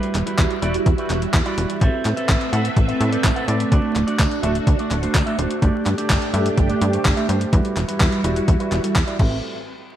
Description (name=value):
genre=italo disco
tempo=126 BPM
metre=4/4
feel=straight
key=A dorian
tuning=A4 = 440 Hz
part: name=string machine, full ensemble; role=sustained chords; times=0.0-9.4 s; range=G3 to E5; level=-24 LUFS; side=right 1 dB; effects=phaser, ensemble chorus
part: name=electric guitar with an envelope filter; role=stabs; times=0.0-9.4 s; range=G3 to F#5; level=-25 LUFS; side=right 2 dB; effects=low-pass filter, ping-pong delay
part: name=clean 12-bit digital drum machine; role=drums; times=0.0-9.3 s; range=crash cymbal, handclaps, hi-hat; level=-27 LUFS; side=left 1 dB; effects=none
part: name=tight sequencer bass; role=bass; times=0.1-9.4 s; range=D1 to A2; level=-22 LUFS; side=equal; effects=none
part: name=electronic kick drum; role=drums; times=0.4-9.3 s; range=none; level=-18 LUFS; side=equal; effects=none
room=moderate plate reverb, RT60 1.9 s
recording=bright 1980s-style digital production, vinyl crackle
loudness=-17 LUFS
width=side -11 dB against mid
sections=0.0-9.4 A section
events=filter sweep on clean electric guitar 0.0-9.4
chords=0.0 Emadd9; 1.8 Amadd9; 3.7 D; 5.6 Gsus2; 7.5 Emadd9; 9.2 Amadd9; 9.4 N.C.